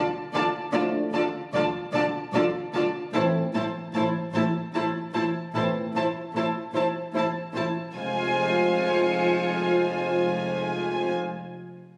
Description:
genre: cinematic, suspense film score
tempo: 75 BPM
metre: 3/4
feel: straight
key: F dorian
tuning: A4 = 444 Hz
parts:
  - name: warm studio viola section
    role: accompaniment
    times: 0.0-11.1 s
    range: E4 to F4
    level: -32 LUFS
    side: equal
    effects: none
  - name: warm chamber violin section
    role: melody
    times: 0.3-11.1 s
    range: Ab5 to A5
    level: -34 LUFS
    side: equal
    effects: none
  - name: warm symphonic violin section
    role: second line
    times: 0.3-11.1 s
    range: C5 to D5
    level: -33 LUFS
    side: equal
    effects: none
  - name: rich symphonic cello section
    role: bass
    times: 0.3-11.1 s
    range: F2 to D3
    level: -34 LUFS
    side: equal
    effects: none
  - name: warm symphonic double bass section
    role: bass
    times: 0.3-11.1 s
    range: F1 to D2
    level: -38 LUFS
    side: equal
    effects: none
  - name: dark French horn section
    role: sustained chords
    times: 0.7-11.1 s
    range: Ab3 to D4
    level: -35 LUFS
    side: equal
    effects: none
  - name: dark trombone section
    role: sustained chords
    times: 0.7-11.1 s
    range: A2 to F3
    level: -37 LUFS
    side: equal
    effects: none
  - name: warm symphonic violin section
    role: texture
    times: 7.9-9.9 s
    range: C7 to Db7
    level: -38 LUFS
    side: equal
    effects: none
room: wet scoring stage reverb, RT60 1.7 s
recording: recorded on a phone in the room, club reverb, compression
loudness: -26 LUFS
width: mono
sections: 0.0-7.9 A section; 7.9-10.3 B section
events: none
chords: 0.0 Dm; 3.1 A5; 7.9 Fm

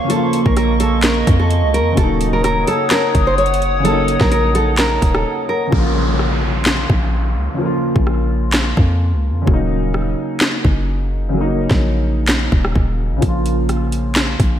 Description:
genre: hip hop, trap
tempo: 128 BPM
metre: 4/4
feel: half-time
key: Bb harmonic minor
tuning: A4 = 440 Hz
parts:
  - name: nylon-string guitar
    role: melody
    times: 0.0-5.7 s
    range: A4 to Db5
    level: -19 LUFS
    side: right 1 dB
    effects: tape echo
  - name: dark grand piano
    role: accompaniment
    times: 0.0-14.6 s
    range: Db3 to F4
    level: -21 LUFS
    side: equal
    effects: lush chorus
  - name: warbly tape-like pad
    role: sustained chords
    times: 0.0-5.7 s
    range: Bb3 to Eb6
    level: -21 LUFS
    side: equal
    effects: chorus, built-in reverb, phaser
  - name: trap drum kit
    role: drums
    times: 0.1-14.5 s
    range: handclaps, hi-hat, kick drum, rim click, snare drum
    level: -18 LUFS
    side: equal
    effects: none
  - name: warm 808-style bass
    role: bass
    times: 0.5-14.6 s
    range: Eb1 to F2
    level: -18 LUFS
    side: equal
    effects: none
  - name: downlifter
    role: sound effects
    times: 5.7-9.5 s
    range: none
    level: -25 LUFS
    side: equal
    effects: none
room: moderate lush hall reverb, RT60 1.7 s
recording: dreamy mix soaked in reverb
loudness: -14 LUFS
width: side -10 dB against mid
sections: 0.0-5.7 A section; 5.7-14.6 B section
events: break 5.3-5.7; hi-hats muted 5.7-13.2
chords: 0.0 Bbm; 2.0 Ebm7; 5.7 Bbm; 9.5 Ebm7; 13.2 Bbm

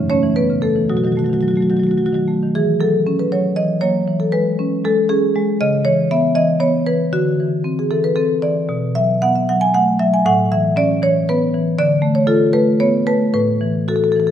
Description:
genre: classical, contemporary piece for solo marimba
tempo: 107-122 BPM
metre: 3/4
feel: rubato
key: E major, A major from 8.7 s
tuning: A4 = 440 Hz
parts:
  - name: marimba with medium mallets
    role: solo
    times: 0.0-14.3 s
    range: F#2 to G#5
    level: -14 LUFS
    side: equal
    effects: none
room: wet recital hall reverb, RT60 1.6 s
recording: none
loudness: -14 LUFS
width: side -10 dB against mid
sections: 0.0-2.5 A section; 2.5-14.3 B section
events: none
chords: 0.0 F#m7; 0.9 B7; 2.5 Esus2; 3.6 F#6/E; 4.1 E6; 5.6 C#m7; 7.1 D9; 8.7 B5; 10.3 Aadd9; 11.8 Dm6; 13.3 Asus2

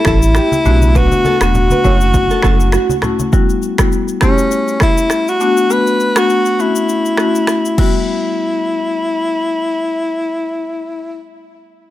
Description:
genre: afrobeats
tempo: 101 BPM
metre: 4/4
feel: swing 55% on 16ths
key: E dorian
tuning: A4 = 438 Hz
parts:
  - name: warm tenor saxophone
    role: melody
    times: 0.0-11.2 s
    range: C#4 to B4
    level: -16 LUFS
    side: left 1 dB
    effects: ping-pong delay
  - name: marimba with medium mallets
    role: accompaniment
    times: 0.0-11.3 s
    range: G3 to G4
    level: -18 LUFS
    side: left 4 dB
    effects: none
  - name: nylon-string guitar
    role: riff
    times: 0.0-2.9 s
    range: F#4 to C#5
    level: -21 LUFS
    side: right 5 dB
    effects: ping-pong delay
  - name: afro-pop drum kit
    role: drums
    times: 0.0-7.9 s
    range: crash cymbal, finger snaps, kick drum, rim click, shaker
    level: -16 LUFS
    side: equal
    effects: none
  - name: sub bass with octave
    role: bass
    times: 0.1-2.8 s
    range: E1 to B1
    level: -13 LUFS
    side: equal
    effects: none
  - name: congas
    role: percussion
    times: 0.5-3.3 s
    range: none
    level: -21 LUFS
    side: left 1 dB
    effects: none
room: studio ambience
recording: none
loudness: -12 LUFS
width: side -14 dB against mid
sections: 0.0-8.1 A section; 8.1-10.5 B section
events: none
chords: 0.0 A7; 0.7 Bm7; 1.8 F#m7; 3.3 Emadd9; 4.2 A7; 5.4 Bm7; 6.6 F#m7; 7.8 Emadd9

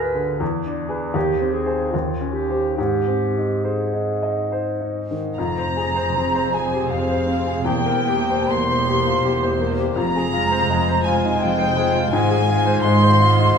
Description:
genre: classical, romantic movement for piano and orchestra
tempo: 68-87 BPM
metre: 3/4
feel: rubato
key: Ab major, F minor from 5.4 s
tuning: A4 = 440 Hz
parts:
  - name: clear grand piano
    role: melody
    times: 0.0-13.6 s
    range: D2 to Ab5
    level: -21 LUFS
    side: left 2 dB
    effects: none
  - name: mellow clarinet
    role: second line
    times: 0.0-4.5 s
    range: F4 to B4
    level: -24 LUFS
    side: right 3 dB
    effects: none
  - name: hollow concert flute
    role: second line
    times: 5.4-13.6 s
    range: F5 to C6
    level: -23 LUFS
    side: equal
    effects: none
  - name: warm chamber violin section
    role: second line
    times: 5.4-13.6 s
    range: F5 to C6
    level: -26 LUFS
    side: left 2 dB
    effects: none
  - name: dark chamber cello section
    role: bass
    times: 5.4-13.6 s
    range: E2 to Ab2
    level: -26 LUFS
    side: right 1 dB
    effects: none
  - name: dark chamber double bass section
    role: bass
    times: 5.4-13.6 s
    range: E1 to Ab1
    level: -26 LUFS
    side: right 5 dB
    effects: none
  - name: warm chamber violin section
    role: melody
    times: 5.8-13.6 s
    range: C5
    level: -30 LUFS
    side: left 5 dB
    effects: none
  - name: warm chamber viola section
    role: accompaniment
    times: 5.8-13.6 s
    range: Ab3 to Ab4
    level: -28 LUFS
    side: right 4 dB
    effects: none
room: wet scoring stage reverb, RT60 1.5 s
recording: minimal, uncompressed stereo recording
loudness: -18 LUFS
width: side -6 dB against mid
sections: 0.0-5.4 A section; 5.4-13.6 B section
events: none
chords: 0.4 E7; 1.1 Ab/Eb; 1.9 Eb13; 2.8 Ab; 5.4 Fm; 7.7 C7/E; 10.0 Fm; 12.1 Fm/Ab

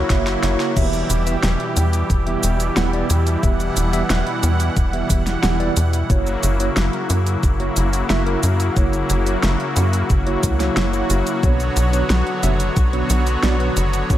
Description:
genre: synthwave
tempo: 90 BPM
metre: 4/4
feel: straight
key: E dorian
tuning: A4 = 439 Hz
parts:
  - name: brassy analog pad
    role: sustained chords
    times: 0.0-14.2 s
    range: B2 to F#5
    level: -22 LUFS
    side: left 1 dB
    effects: chorus, sidechain pumping, shimmer reverb
  - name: tine electric piano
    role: stabs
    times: 0.0-14.2 s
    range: B2 to G5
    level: -25 LUFS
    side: right 2 dB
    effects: medium stereo tremolo, digital delay, shimmer reverb
  - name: tight sequencer bass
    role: bass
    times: 0.0-14.2 s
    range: E1 to F#2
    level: -19 LUFS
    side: equal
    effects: sidechain pumping
  - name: swell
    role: sound effects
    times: 0.0-0.8 s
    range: none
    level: -30 LUFS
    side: right 2 dB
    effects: none
  - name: electronic kick drum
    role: drums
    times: 0.1-14.2 s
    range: none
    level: -18 LUFS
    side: equal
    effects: none
  - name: pop drum kit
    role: drums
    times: 0.1-14.2 s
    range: cabasa, crash cymbal, hi-hat, snare drum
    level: -25 LUFS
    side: equal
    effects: overdrive, high-pass filter on snare, high-pass filter on hats, high-pass filter on cymbals, high-pass filter on perc, high-pass filter on room
room: light reverb, digital ambience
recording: none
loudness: -16 LUFS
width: side -12 dB against mid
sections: 0.8-14.2 A section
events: drum fill 0.0-0.8; swell 0.0-0.8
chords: 0.0 F#7; 0.8 Em; 6.1 F#7; 11.4 Bmadd9

